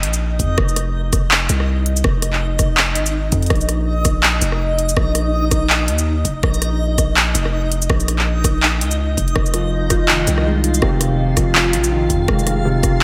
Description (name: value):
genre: half-time drum and bass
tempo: 164 BPM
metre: 4/4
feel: swing 56% on 16ths, half-time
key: unclear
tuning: A4 = 440 Hz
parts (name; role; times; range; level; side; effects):
- long sustained 808-style bass; bass; 0.0-13.0 s; F1 to F2; -22 LUFS; equal; tube saturation
- drum and bass drum kit; drums; 0.0-12.9 s; handclaps, hi-hat, rim click, shaker; -22 LUFS; equal; overdrive
- backwards swelling texture; texture; 0.0-13.0 s; Eb4 to F5; -27 LUFS; equal; built-in reverb
- electronic kick drum; drums; 0.4-12.9 s; none; -22 LUFS; equal; overdrive
- felt-muted upright piano; arpeggios; 9.5-13.0 s; C3 to F4; -22 LUFS; equal; analog delay
room: moderate lush hall reverb, RT60 1.7 s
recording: dreamy mix soaked in reverb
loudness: -17 LUFS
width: mono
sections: 0.0-13.0 A section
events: none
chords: 0.0 F7(no3); 3.5 Bb5; 9.4 Fm7